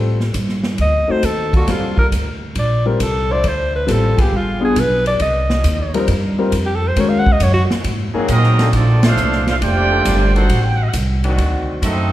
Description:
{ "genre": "jazz, big band swing", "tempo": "136 BPM", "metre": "4/4", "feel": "swing 68% on 8ths", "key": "Bb major", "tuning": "A4 = 440 Hz", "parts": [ { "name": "warm concert grand piano", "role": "accompaniment", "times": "0.0-8.3 s", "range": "G3 to Bb4", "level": "-21 LUFS", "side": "left 3 dB", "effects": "none" }, { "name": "upright bass", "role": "bass", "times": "0.0-12.1 s", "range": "F1 to Bb2", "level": "-17 LUFS", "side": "equal", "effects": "none" }, { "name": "swinging big-band drum kit", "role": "drums", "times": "0.2-12.0 s", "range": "hi-hat, kick drum, ride cymbal, snare drum", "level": "-22 LUFS", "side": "equal", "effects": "none" }, { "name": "clear alto saxophone", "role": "melody", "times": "0.8-7.6 s", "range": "F4 to Gb5", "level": "-19 LUFS", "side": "equal", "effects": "none" }, { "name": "bright trombone section", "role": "sustained chords", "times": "1.5-11.8 s", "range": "Bb2 to C5", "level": "-26 LUFS", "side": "left 1 dB", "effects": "none" }, { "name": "clear trumpet section", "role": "melody", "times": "8.3-12.1 s", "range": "C4 to G5", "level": "-19 LUFS", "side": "right 2 dB", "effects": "none" }, { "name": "bright trombone section", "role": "second line", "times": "8.3-12.1 s", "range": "F3 to G4", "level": "-22 LUFS", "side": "right 2 dB", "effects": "none" } ], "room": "wet recital hall reverb, RT60 1.7 s", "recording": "recorded in a church or concert hall", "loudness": "-14 LUFS", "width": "side -14 dB against mid", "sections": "0.0-8.7 A section; 8.7-12.1 B section", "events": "alto saxophone solo 0.0-8.7; band accent 8.9", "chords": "0.0 G9sus4; 0.8 D7b9; 1.7 Gm9; 3.4 Dm9; 4.3 G7b9; 5.2 Cm11; 7.0 Ebm7; 7.8 Ab9; 8.7 Bbmaj9; 10.5 D7b9" }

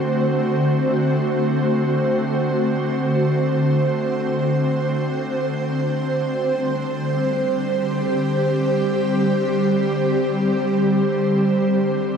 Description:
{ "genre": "ambient", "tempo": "free time", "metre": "none", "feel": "none", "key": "unclear", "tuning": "A4 = 440 Hz", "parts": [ { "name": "ethereal airy pad", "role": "solo", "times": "0.0-12.2 s", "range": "D3 to C5", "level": "-18 LUFS", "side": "equal", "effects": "ensemble chorus, built-in reverb" } ], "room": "wet huge ambient reverb, RT60 7.4 s", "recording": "in a vast, echoing space", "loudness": "-18 LUFS", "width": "side -6 dB against mid", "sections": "0.0-12.2 A section", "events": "none", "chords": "0.0 D7; 5.5 Csus2/D" }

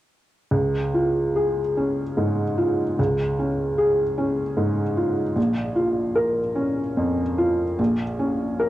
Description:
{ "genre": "classical", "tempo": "74 BPM", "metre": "3/4", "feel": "rubato", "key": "unclear", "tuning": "A4 = 439 Hz", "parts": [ { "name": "felt-muted upright piano", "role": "accompaniment", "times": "0.5-8.7 s", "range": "Bb1 to Bb4", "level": "-20 LUFS", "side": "equal", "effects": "cassette tape" } ], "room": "moderate spring reverb, RT60 1.1 s, studio reverb", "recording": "home recording on cassette", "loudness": "-20 LUFS", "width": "side -14 dB against mid", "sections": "0.5-8.7 A section", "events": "none", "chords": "0.5 Db; 5.4 Bbm" }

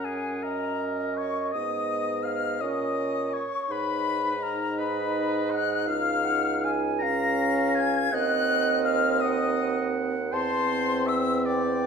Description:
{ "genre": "classical, slow romantic movement for wind quintet", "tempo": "54 BPM (dotted quarters)", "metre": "6/8", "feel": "rubato", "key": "unclear", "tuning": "A4 = 440 Hz", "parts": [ { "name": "bright concert flute", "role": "melody", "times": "0.0-11.9 s", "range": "G#5 to Bb6", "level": "-30 LUFS", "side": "left 7 dB", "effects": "none" }, { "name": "clear oboe", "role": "second line", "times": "0.0-11.9 s", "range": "G#4 to Bb5", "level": "-32 LUFS", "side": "left 2 dB", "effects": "none" }, { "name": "clear French horn", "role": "accompaniment", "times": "0.0-11.9 s", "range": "B3 to D#4", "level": "-31 LUFS", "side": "equal", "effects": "none" }, { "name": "warm clarinet", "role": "accompaniment", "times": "0.0-11.9 s", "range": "C#5 to A5", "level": "-31 LUFS", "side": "right 8 dB", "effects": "none" }, { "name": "mellow bassoon", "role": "bass", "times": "0.0-11.9 s", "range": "Db2 to A#2", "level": "-30 LUFS", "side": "right 2 dB", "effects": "none" } ], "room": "wet recital hall reverb, RT60 1.4 s", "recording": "minimal, uncompressed stereo recording", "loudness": "-24 LUFS", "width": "side -6 dB against mid", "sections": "0.0-11.9 A section", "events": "none", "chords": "0.0 F#; 1.5 G#m; 2.6 A#madd11; 3.7 G#m; 5.9 Db; 8.1 Cdim/Eb; 10.3 C/E" }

